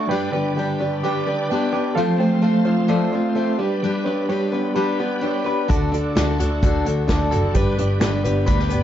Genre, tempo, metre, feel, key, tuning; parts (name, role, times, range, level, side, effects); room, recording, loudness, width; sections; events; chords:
folk rock and heartland rock; 129 BPM; 4/4; straight; A4 = 440 Hz
picked steel-string acoustic guitar; accompaniment; 0.0-8.8 s; D3 to C5; -24 LUFS; left 5 dB
bright tonewheel organ; sustained chords; 0.0-8.8 s; A3 to D5; -33 LUFS; right 1 dB; slow rotary speaker, chorus vibrato
electric guitar through a small old amp; riff; 0.0-8.8 s; G2 to B4; -22 LUFS; right 1 dB; harmonic tremolo
reed electric piano; accompaniment; 0.1-8.8 s; F#4 to B5; -28 LUFS; right 6 dB; fast tremolo
dark double bass; bass; 5.7-8.8 s; F#1 to D2; -22 LUFS; equal
unplugged drum kit; drums; 5.7-8.8 s; hi-hat, kick drum, snare drum; -21 LUFS; equal
studio reverb; nothing above 7.6 kHz; -18 LUFS; side -11 dB against mid
0.0-8.8 A section
reed electric piano fill 4.8-5.7
0.1 G; 2.0 F; 3.6 G; 5.7 D; 7.6 G